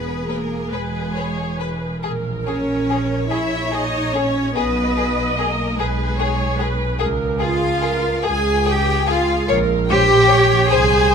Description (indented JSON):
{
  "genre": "classical, slow romantic movement for string orchestra",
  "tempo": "48 BPM (dotted quarters)",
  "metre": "6/8",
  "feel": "uneven beats, rubato",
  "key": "G# minor",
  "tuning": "A4 = 440 Hz",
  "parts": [
    { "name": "rich chamber violin section", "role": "second line", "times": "0.0-11.1 s", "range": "G#4 to Ab5", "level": "-25 LUFS", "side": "left 6 dB", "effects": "none" },
    { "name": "rich chamber viola section", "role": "accompaniment", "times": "0.0-11.1 s", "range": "G#4 to D#5", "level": "-24 LUFS", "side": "right 2 dB", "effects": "none" },
    { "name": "dark chamber cello section", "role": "bass", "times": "0.0-11.1 s", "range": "G#3 to Ab4", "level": "-20 LUFS", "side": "right 1 dB", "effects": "none" },
    { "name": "rich chamber double bass section", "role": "bass", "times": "0.0-11.1 s", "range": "E1 to Db2", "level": "-22 LUFS", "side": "right 2 dB", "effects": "none" },
    { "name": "rich chamber violin section", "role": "melody", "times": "0.3-10.8 s", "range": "G#4 to Db5", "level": "-26 LUFS", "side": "left 7 dB", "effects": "none" }
  ],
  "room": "light reverb",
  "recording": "none",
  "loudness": "-16 LUFS",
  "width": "side -6 dB against mid",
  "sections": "0.0-11.1 A section",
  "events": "none",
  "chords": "0.0 E; 2.0 A#dim; 4.6 G#m/B; 7.0 Db; 9.5 Bbm"
}